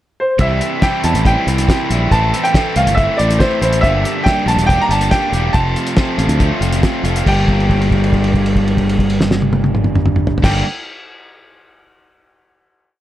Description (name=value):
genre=indie rock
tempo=140 BPM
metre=4/4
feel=straight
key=G dorian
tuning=A4 = 441 Hz
part: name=clear upright piano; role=melody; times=0.2-10.6 s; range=C5 to Bb5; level=-18 LUFS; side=right 1 dB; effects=slapback echo
part: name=crunchy overdriven guitar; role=riff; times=0.4-10.6 s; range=F2 to G4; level=-18 LUFS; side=equal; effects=none
part: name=growling fingered electric bass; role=bass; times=0.4-10.6 s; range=E1 to E2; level=-17 LUFS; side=equal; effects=overdrive
part: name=cloth-damped thuddy drum kit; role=drums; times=0.4-10.5 s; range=crash cymbal, hi-hat, kick drum, snare drum, toms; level=-17 LUFS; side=equal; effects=none
room=little or no reverb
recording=dark, warm production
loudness=-12 LUFS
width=side -13 dB against mid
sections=0.0-0.4 pickup bar; 0.4-7.3 pre-chorus; 7.3-10.7 final chord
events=held note 7.3-10.4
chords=0.4 C; 2.1 Am; 3.8 Gm; 5.6 F; 7.3 Gm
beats=| 0.41 0.83 1.26 1.69 | 2.12 2.55 2.98 3.41 | 3.84 4.26 4.69 5.12 | 5.55 5.98 6.41 6.84 | 7.27 7.70 8.13 8.55 | 8.98 9.41 9.84 10.27